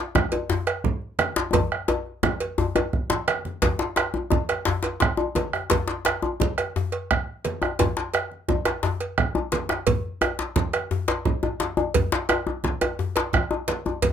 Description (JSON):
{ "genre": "west african traditional, West African drum ensemble", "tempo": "115 BPM (dotted quarters)", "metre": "12/8", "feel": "straight", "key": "none", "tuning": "none", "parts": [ { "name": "bombo", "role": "percussion", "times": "0.2-14.1 s", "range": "none", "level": "-25 LUFS", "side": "right 3 dB", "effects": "none" }, { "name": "congas", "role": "percussion", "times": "0.2-14.1 s", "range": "none", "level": "-28 LUFS", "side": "right 6 dB", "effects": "none" }, { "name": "djembe", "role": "percussion", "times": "0.2-14.0 s", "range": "none", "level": "-25 LUFS", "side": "left 4 dB", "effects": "none" }, { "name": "cowbell", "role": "percussion", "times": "0.3-14.1 s", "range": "none", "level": "-28 LUFS", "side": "right 4 dB", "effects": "none" }, { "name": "djembe", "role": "percussion", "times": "0.3-14.1 s", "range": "none", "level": "-30 LUFS", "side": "left 5 dB", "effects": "none" } ], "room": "moderate small room reverb, RT60 0.5 s", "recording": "none", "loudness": "-22 LUFS", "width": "side -8 dB against mid", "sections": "0.0-3.6 A section; 3.6-14.1 B section", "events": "drum fill 1.5-3.6, 11.4-12.0", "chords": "none" }